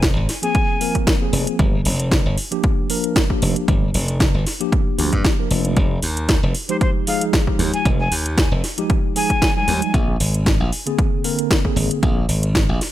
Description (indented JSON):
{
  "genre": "nu-disco, nu disco",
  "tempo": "115 BPM",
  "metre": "4/4",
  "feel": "swing 54% on 16ths",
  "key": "F dorian",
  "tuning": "A4 = 440 Hz",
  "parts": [
    { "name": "glassy slap bass", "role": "bass", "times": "0.0-12.8 s", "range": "F1 to G2", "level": "-20 LUFS", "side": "equal", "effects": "none" },
    { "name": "electronic kick drum", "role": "drums", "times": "0.0-12.7 s", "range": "none", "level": "-19 LUFS", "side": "equal", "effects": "overdrive" },
    { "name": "house drum kit", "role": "drums", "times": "0.0-12.9 s", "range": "hi-hat, snare drum", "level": "-23 LUFS", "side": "equal", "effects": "overdrive" },
    { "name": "breathy bright jazz flute", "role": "melody", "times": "0.4-1.0, 6.7-9.9 s", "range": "C5 to Ab5", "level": "-25 LUFS", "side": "left 1 dB", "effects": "vintage 12-bit sampler grit, dub echo" },
    { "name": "mellow tine electric piano", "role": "accompaniment", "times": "0.4-12.2 s", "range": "D3 to Bb4", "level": "-24 LUFS", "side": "equal", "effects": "medium stereo tremolo, vintage 12-bit sampler grit, sidechain pumping, dub echo" }
  ],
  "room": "digital ambience",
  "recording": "none",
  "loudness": "-16 LUFS",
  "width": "side -13 dB against mid",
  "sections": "0.0-12.9 A section",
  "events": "none",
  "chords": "0.0 Ab69; 1.6 Gm7; 5.8 Fm9; 9.9 Bb9"
}